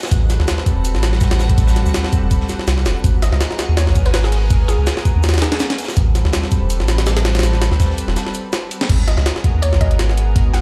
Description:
drum and bass, jungle; 164 BPM; 4/4; swing 55% on 16ths; A4 = 440 Hz
lush unison pad; sustained chords; 0.0-10.6 s; G3 to B4; -28 LUFS; equal; chorus, vintage 12-bit sampler grit
crunchy breakbeat drum kit; drums; 0.0-8.9 s; hi-hat, shaker, snare drum; -35 LUFS; equal; high-pass filter on hats, studio reverb, high-pass filter on snare, high-pass filter on perc, high-pass filter on room
jungle sampler-style drum kit; drums; 0.0-10.6 s; crash cymbal, hi-hat, kick drum, snare drum; -20 LUFS; equal; studio reverb
backwards swelling texture; texture; 0.0-8.9 s; F#4 to F#5; -37 LUFS; equal; built-in reverb
soft dub sub bass; bass; 0.1-10.6 s; E1 to D#2; -18 LUFS; equal
mallet-like synth pluck; melody; 3.2-5.9, 9.1-10.6 s; G#4 to F#5; -29 LUFS; equal; subtle chorus, dub echo
studio reverb; played on a big sound system in a bare room, large studio reverb; -16 LUFS; mono
0.0-8.9 A section; 8.9-10.6 A section
drop 0.0-8.9, 8.9-10.6; break 8.2-8.9
0.1 Am9; 3.0 G#m9; 6.0 Am9; 8.9 G#m9

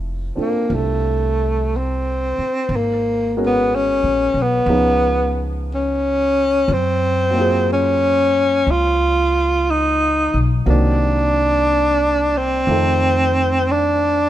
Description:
jazz ballad; 60 BPM; 4/4; swing 67% on 8ths; A4 = 438 Hz
warm concert grand piano; accompaniment; 0.0-14.3 s; Eb3 to C5; -25 LUFS; right 1 dB
upright bass; bass; 0.0-14.3 s; F1 to Gb2; -21 LUFS; equal
mellow tenor saxophone; melody; 0.4-14.3 s; A3 to F4; -17 LUFS; equal
light reverb; minimal, uncompressed stereo recording; -15 LUFS; side -12 dB against mid
0.0-14.3 A section
0.0 Fmaj7; 2.7 Abm11; 4.7 Db9; 6.7 Gbmaj9#11; 10.7 Cm7b5; 12.7 F7

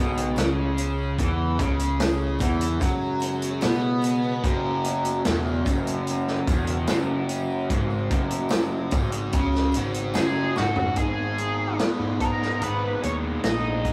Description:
psychedelic rock; 74 BPM; 4/4; straight; A4 = 438 Hz
mellow tonewheel organ; sustained chords; 0.0-13.9 s; C#3 to C#5; -36 LUFS; equal; slow rotary speaker
fuzz guitar; riff; 0.0-13.9 s; E2 to G#4; -30 LUFS; equal; distortion, phaser
fuzz picked electric bass; bass; 0.0-13.9 s; E1 to B2; -30 LUFS; equal; overdrive
tambourine; percussion; 0.1-10.9 s; -52 LUFS; equal
vintage drum kit; drums; 0.2-13.9 s; hi-hat, kick drum, snare drum, toms; -29 LUFS; equal
biting lead guitar; melody; 10.2-13.9 s; F#4 to D#5; -30 LUFS; equal; wah, overdrive
moderate small room reverb, RT60 0.5 s; rough rehearsal-room recording; -24 LUFS; mono
0.0-11.0 A section; 11.0-13.9 B section
drum fill 10.6-11.0
0.0 C#5; 4.4 F#5; 11.0 G#m

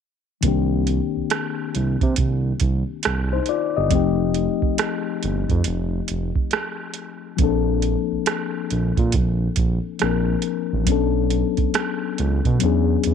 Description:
R&B, neo-soul; 69 BPM; 4/4; swing 63% on 16ths; C dorian; A4 = 439 Hz
reed electric piano; accompaniment; 0.4-13.1 s; Eb3 to Eb5; -23 LUFS; left 12 dB
smooth synth bass; bass; 0.4-13.1 s; F1 to C3; -22 LUFS; right 2 dB
soft vintage rhythm box; drums; 0.4-13.1 s; hi-hat, kick drum, rim click; -24 LUFS; right 4 dB; overdrive
light reverb; 1960s-style stereo; -19 LUFS; side -7 dB against mid
0.4-13.1 A section
0.4 Cm9; 3.9 F9; 7.4 Bbmaj9; 10.9 Bm9; 12.6 E13

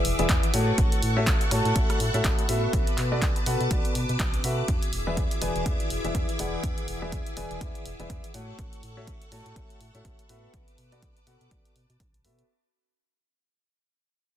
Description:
piano house; 123 BPM; 4/4; swing 58% on 16ths; E mixolydian; A4 = 443 Hz
string machine, violins; sustained chords; 0.0-12.5 s; G#4 to D6; -34 LUFS; equal; ensemble chorus, sidechain pumping
dark concert grand piano; riff; 0.0-12.4 s; E3 to A5; -30 LUFS; left 1 dB; sidechain pumping, ping-pong delay
organ-like FM bass; bass; 0.0-12.4 s; E1 to B2; -30 LUFS; equal; sidechain pumping
punchy analog drum machine; drums; 0.0-12.5 s; handclaps, hi-hat, rim click; -32 LUFS; equal
warbly tape-like pad; texture; 0.0-12.5 s; B3 to B5; -40 LUFS; left 4 dB; chorus, built-in reverb, sidechain pumping
electronic kick drum; drums; 0.3-12.1 s; -27 LUFS; equal
digital ambience; dense, heavily limited modern master; -23 LUFS; side -11 dB against mid
0.0-12.5 A section
fade-out on ambient pad 0.0-12.5; fade-out 0.0-12.5
0.0 E7; 0.5 A6; 2.7 Bm7; 4.7 E7; 8.3 A6; 10.5 Bm7

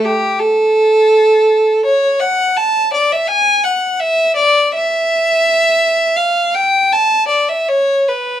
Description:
classical, baroque-style suite movement for unaccompanied violin; 83 BPM; 3/4; rubato; A4 = 438 Hz
rich violin; solo; 0.0-8.4 s; G4 to A5; -11 LUFS; equal
light reverb; dark, warm production; -11 LUFS; side -11 dB against mid
0.0-8.4 A section

